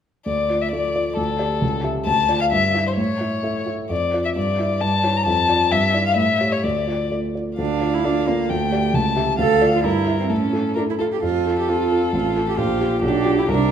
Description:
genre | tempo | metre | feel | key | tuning
quick classical-period movement for piano trio | 132 BPM | 2/4 | rubato | D minor | A4 = 440 Hz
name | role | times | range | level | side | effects
dark violin | melody | 0.3-13.7 s | G4 to Bb5 | -22 LUFS | left 5 dB | none
warm concert grand piano | accompaniment | 0.3-13.7 s | A1 to E5 | -21 LUFS | equal | none
warm cello | second line | 7.6-13.7 s | A3 to A4 | -22 LUFS | right 7 dB | none
room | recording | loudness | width
wet recital hall reverb, RT60 1.5 s | none | -18 LUFS | side -8 dB against mid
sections
0.3-7.6 A section; 7.6-13.7 A section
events
none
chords
0.3 Dm; 1.2 G5/D; 1.6 A7/C#; 2.1 Dm; 2.5 C/G (rootless); 3.0 A; 3.9 Dm/F; 4.4 Em7/G; 4.8 A7/G; 5.3 Dm/F; 5.7 Em7/G; 6.2 A7; 6.6 Dm; 8.5 G5/D; 8.9 A7/C#; 9.4 Dm; 9.8 Edim/G; 10.3 A; 11.2 F; 12.1 F/A; 12.6 Gm7/Bb; 13.0 G7/B

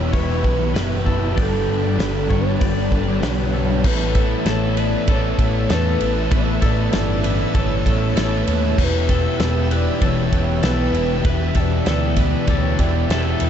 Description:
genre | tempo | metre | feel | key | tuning
rock, shoegaze and dream pop | 97 BPM | 4/4 | straight | A mixolydian | A4 = 439 Hz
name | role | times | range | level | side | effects
soft octave-layered synth lead | melody | 0.0-13.5 s | A4 to E5 | -26 LUFS | right 1 dB | chorus, phaser, tape echo
string machine, full ensemble | sustained chords | 0.0-13.5 s | B4 to E6 | -31 LUFS | right 1 dB | ensemble chorus
twangy electric guitar | arpeggios | 0.0-13.5 s | G4 to D5 | -31 LUFS | left 7 dB | lush chorus, tape echo
biting overdriven guitar | riff | 0.0-13.5 s | E3 to A4 | -27 LUFS | right 10 dB | reverse reverb
raw garage guitar | riff | 0.0-3.8 s | E3 to G4 | -31 LUFS | right 3 dB | overdrive, analog chorus
thick fuzz guitar | riff | 0.0-13.5 s | E2 to B3 | -24 LUFS | left 8 dB | distortion, wide subtle chorus
overdriven picked electric bass | bass | 0.0-13.5 s | E1 to E2 | -22 LUFS | equal | none
loose indie drum kit | drums | 0.1-13.5 s | crash cymbal, hi-hat, kick drum, ride cymbal, snare drum | -22 LUFS | equal | none
room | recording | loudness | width
light reverb | nothing above 8.0 kHz | -16 LUFS | side -9 dB against mid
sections
0.0-3.9 A section; 3.9-13.5 B section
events
none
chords
0.0 Em; 1.4 Gadd9; 3.9 Asus2; 8.8 Em

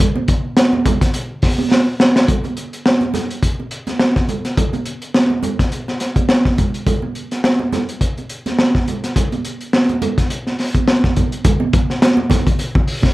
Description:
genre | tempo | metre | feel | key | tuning
funk | 105 BPM | 4/4 | swing 56% on 16ths | none | none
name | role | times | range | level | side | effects
crunchy breakbeat drum kit | drums | 0.0-13.1 s | hi-hat, kick drum, snare drum | -15 LUFS | equal | none
congas | percussion | 0.2-13.1 s | none | -22 LUFS | right 4 dB | none
room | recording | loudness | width
light reverb | none | -14 LUFS | side -18 dB against mid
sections
0.0-2.3 A section; 2.3-11.5 B section; 11.5-13.1 A section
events
drum fill 1.7-2.3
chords
none

